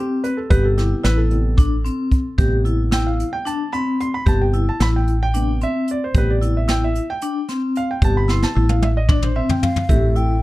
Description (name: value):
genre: progressive instrumental, band music in an uneven meter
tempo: 224 BPM (eighths)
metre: 7/8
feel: straight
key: A minor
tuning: A4 = 440 Hz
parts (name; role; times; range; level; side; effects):
- warm concert grand piano; accompaniment; 0.0-10.4 s; C3 to C6; -25 LUFS; right 3 dB; none
- vibraphone with medium hard mallets; arpeggios; 0.0-10.3 s; C4 to G4; -23 LUFS; left 3 dB; none
- jazz brush drum kit; drums; 0.2-10.3 s; hi-hat, kick drum, snare drum, toms; -19 LUFS; equal; none
- woody fretless electric bass; bass; 0.5-10.4 s; G1 to A1; -18 LUFS; equal; none
- baroque flute; melody; 9.6-10.4 s; E5 to G5; -25 LUFS; equal; tape echo
room: light reverb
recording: dark, warm production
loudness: -16 LUFS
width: side -18 dB against mid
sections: 0.0-9.9 A section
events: grand piano solo 0.0-9.9; drum fill 8.3-9.9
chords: 0.0 Am9; 9.9 Am